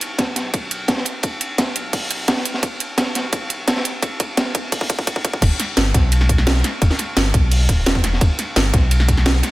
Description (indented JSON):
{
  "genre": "liquid drum and bass",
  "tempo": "172 BPM",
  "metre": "4/4",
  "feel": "straight",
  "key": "E minor",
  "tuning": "A4 = 444 Hz",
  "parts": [
    { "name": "crunchy breakbeat drum kit", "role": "drums", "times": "0.0-9.5 s", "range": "hi-hat, ride cymbal, snare drum", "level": "-22 LUFS", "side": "equal", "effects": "high-pass filter on cymbals, studio reverb, high-pass filter on hats, high-pass filter on snare, high-pass filter on room" },
    { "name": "drum and bass drum kit", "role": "drums", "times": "0.0-9.5 s", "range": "crash cymbal, hi-hat, snare drum", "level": "-21 LUFS", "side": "right 2 dB", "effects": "overdrive, studio reverb" },
    { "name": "sub bass with octave", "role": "bass", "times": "0.2-9.4 s", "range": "D1 to C2", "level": "-18 LUFS", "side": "equal", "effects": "high-pass filter" },
    { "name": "electronic kick drum", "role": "drums", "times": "0.2-9.2 s", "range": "none", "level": "-19 LUFS", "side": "equal", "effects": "overdrive, high-pass filter on kick, studio reverb" }
  ],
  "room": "small room ambience",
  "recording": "none",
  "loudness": "-16 LUFS",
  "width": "side -17 dB against mid",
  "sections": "0.0-5.4 A section; 5.4-9.5 B section",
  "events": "build-up 0.0-5.4; drum fill 2.6-5.4; drop 5.4-9.5",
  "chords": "none"
}